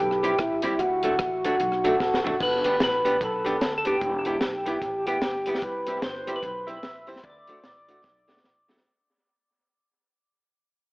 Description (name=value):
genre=ska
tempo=149 BPM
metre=4/4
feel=swing 61% on 8ths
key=G major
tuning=A4 = 441 Hz
part: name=percussive tonewheel organ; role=melody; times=0.0-8.4 s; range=E4 to E5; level=-25 LUFS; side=equal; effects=overdrive, slow rotary speaker, dub echo
part: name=upright bass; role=bass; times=0.0-8.8 s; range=E1 to D2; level=-37 LUFS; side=equal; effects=none
part: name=deep reggae drum kit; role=drums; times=0.1-8.8 s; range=crash cymbal, hi-hat, kick drum, rim click, snare drum, toms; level=-31 LUFS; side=equal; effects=dub echo
part: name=archtop guitar, miked and amplified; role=accompaniment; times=0.2-8.8 s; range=F#3 to G4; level=-29 LUFS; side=equal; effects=none
room=moderate large studio reverb, RT60 1.4 s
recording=AM radio sound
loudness=-23 LUFS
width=side -26 dB against mid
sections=0.0-2.4 A section; 2.4-8.8 B section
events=drum fill 2.0-2.4, 8.0-8.8; fade-out 2.4-8.8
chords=0.0 C; 0.8 D; 2.4 G; 4.0 Em; 5.6 C; 7.2 D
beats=0.39 | 0.79 1.20 1.60 2.00 | 2.40 2.81 3.21 3.61 | 4.01 4.42 4.82 5.22 | 5.62 6.03 6.43 6.83 | 7.23 7.63 8.04 8.44